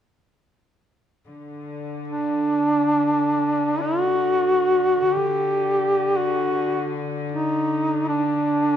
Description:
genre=caucasian folk, Caucasian lament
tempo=free time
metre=none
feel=none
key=D major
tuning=A4 = 440 Hz
part: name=rich chamber string section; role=drone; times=1.3-8.8 s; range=D3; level=-29 LUFS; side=left 3 dB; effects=none
part: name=mellow duduk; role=melody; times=2.1-8.8 s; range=D4 to G4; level=-20 LUFS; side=equal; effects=none
room=moderate scoring stage reverb, RT60 2.1 s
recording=minimal, uncompressed stereo recording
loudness=-19 LUFS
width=side -9 dB against mid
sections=1.3-8.8 A section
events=none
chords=none

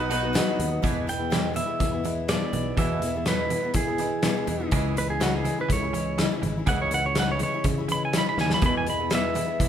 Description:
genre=folk rock and heartland rock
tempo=123 BPM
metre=4/4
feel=straight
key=E major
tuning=A4 = 440 Hz
part: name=pedal steel guitar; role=melody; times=0.0-9.7 s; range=F#4 to B5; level=-28 LUFS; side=right 3 dB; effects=none
part: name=mandolin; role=second line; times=0.0-0.7 s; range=B4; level=-31 LUFS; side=right 2 dB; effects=none
part: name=picked acoustic archtop guitar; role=accompaniment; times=0.0-9.7 s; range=E2 to F#4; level=-31 LUFS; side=left 5 dB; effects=none
part: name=mellow tonewheel organ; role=sustained chords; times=0.0-0.8 s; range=B4 to D#6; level=-38 LUFS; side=right 4 dB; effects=slow rotary speaker, chorus vibrato
part: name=twelve-string electric guitar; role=riff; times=0.0-9.7 s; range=E2 to F#4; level=-32 LUFS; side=right 4 dB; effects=none
part: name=fingered electric bass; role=bass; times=0.0-9.7 s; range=G#1 to E3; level=-31 LUFS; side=equal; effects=none
part: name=loose indie drum kit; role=drums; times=0.1-9.7 s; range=hi-hat, kick drum, snare drum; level=-27 LUFS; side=left 1 dB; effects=none
room=light reverb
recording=band playing live in one room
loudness=-22 LUFS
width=side -9 dB against mid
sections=0.8-9.7 A section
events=pedal steel guitar solo 0.8-9.7; drum fill 8.4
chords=0.0 B; 0.8 E; 4.7 C#m; 8.6 E

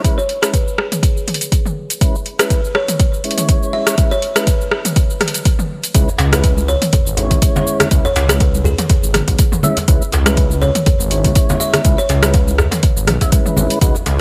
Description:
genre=afro house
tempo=122 BPM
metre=4/4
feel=swing 55% on 16ths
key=C# minor pentatonic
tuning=A4 = 437 Hz
part: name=tonewheel organ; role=stabs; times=0.0-14.0 s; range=G#3 to E5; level=-25 LUFS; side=equal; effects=overdrive, slow rotary speaker, sidechain pumping, digital delay
part: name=deep house drum kit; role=drums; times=0.0-14.2 s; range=cabasa, hi-hat, rim click, toms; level=-20 LUFS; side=equal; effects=overdrive, small room ambience
part: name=electronic kick drum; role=drums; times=0.0-13.9 s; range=none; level=-17 LUFS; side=equal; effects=overdrive, small room ambience
part: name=buzzing kalimba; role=melody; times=0.2-12.9 s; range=G#4 to E5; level=-26 LUFS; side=equal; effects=low-pass filter, digital delay
part: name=dark detuned saw bass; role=bass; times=5.9-14.2 s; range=G#1 to C#2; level=-19 LUFS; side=equal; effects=sidechain pumping
part: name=congas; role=percussion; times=5.9-13.9 s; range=none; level=-25 LUFS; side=equal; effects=none
part: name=djembe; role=percussion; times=6.1-14.2 s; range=none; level=-26 LUFS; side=equal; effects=none
room=digital ambience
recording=none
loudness=-15 LUFS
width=mono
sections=0.0-5.9 A section; 5.9-14.2 B section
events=build-up 0.0-5.9; drop 5.9-14.2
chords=0.0 C#m7

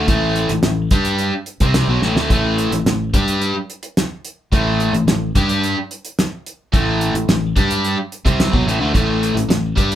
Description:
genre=classic rock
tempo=108 BPM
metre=4/4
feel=straight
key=A minor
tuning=A4 = 440 Hz
part: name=crunchy overdriven guitar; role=riff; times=0.0-10.0 s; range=A2 to G4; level=-18 LUFS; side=equal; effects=none
part: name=fingered electric bass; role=bass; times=0.0-10.0 s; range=A1 to G2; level=-22 LUFS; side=equal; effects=none
part: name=damped 70s drum kit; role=drums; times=0.1-10.0 s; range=hi-hat, kick drum, snare drum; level=-18 LUFS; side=equal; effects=none
room=light reverb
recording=band playing live in one room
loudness=-15 LUFS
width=side -11 dB against mid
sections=0.0-10.0 A section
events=drum fill 2.0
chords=0.0 Am

